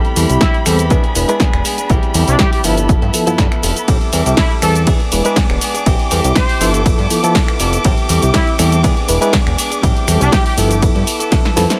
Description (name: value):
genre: filtered disco house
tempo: 121 BPM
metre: 4/4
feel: swing 53% on 16ths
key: A minor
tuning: A4 = 436 Hz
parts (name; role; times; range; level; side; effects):
- warm studio string section; sustained chords; 0.0-11.8 s; B5 to D6; -27 LUFS; equal; sidechain pumping
- direct-recorded clean electric guitar; riff; 0.0-11.8 s; F3 to A4; -24 LUFS; equal; spring reverb, sidechain pumping, tape echo
- punchy analog drum machine; drums; 0.0-11.8 s; finger snaps, hi-hat, ride cymbal, shaker, snare drum; -21 LUFS; equal; none
- reed electric piano; accompaniment; 0.2-11.8 s; F3 to C5; -21 LUFS; equal; overdrive, fast tremolo, phaser, sidechain pumping
- fat analog bass; bass; 0.2-11.7 s; E1 to G2; -18 LUFS; equal; tube saturation, sidechain pumping
- clear horn section; melody; 0.4-10.5 s; D4 to C5; -24 LUFS; equal; sidechain pumping, tape echo
- electronic kick drum; drums; 0.4-11.4 s; none; -17 LUFS; equal; none
room: light reverb, digital ambience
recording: echo-heavy mix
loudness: -14 LUFS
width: mono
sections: 0.0-11.8 A section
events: drop 0.0-11.8; drum fill 11.3-11.8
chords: 0.0 Am7; 0.9 E7; 1.9 Am7; 2.6 G13; 3.9 Am7; 4.9 E7; 5.9 Am7; 6.6 G13; 7.8 Am7; 8.8 E7; 9.8 Am7; 10.6 G13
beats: 0.41 0.91 1.40 | 1.90 2.39 2.89 3.39 | 3.88 4.38 4.87 5.37 | 5.87 6.36 6.86 7.35 | 7.85 8.34 8.84 9.34 | 9.83 10.33 10.82 11.32